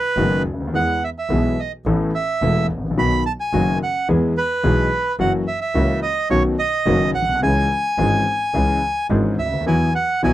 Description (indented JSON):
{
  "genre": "tango",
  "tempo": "107 BPM",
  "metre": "4/4",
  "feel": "rubato",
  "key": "E major",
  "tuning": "A4 = 439 Hz",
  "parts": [
    { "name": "bandoneon", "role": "melody", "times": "0.0-10.3 s", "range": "B4 to B5", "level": "-20 LUFS", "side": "right 2 dB", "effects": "none" },
    { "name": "clear concert grand piano", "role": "accompaniment", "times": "0.2-10.3 s", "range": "E1 to A4", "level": "-20 LUFS", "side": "left 2 dB", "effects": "none" },
    { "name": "clear double bass", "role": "bass", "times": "0.2-10.3 s", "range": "E1 to E2", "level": "-22 LUFS", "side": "right 1 dB", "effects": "none" },
    { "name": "bandoneon", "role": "stabs", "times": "9.7-10.3 s", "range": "F#3 to E4", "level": "-26 LUFS", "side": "right 4 dB", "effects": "none" }
  ],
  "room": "little or no reverb",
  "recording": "dry, close 1970s-style studio recording",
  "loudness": "-17 LUFS",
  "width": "side -14 dB against mid",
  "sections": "0.0-10.3 A section",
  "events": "none",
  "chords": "0.0 B6; 0.7 E; 1.9 Asus2; 3.0 B; 4.1 E; 5.2 F#7; 6.3 Badd9; 7.4 C#m; 9.7 Esus2"
}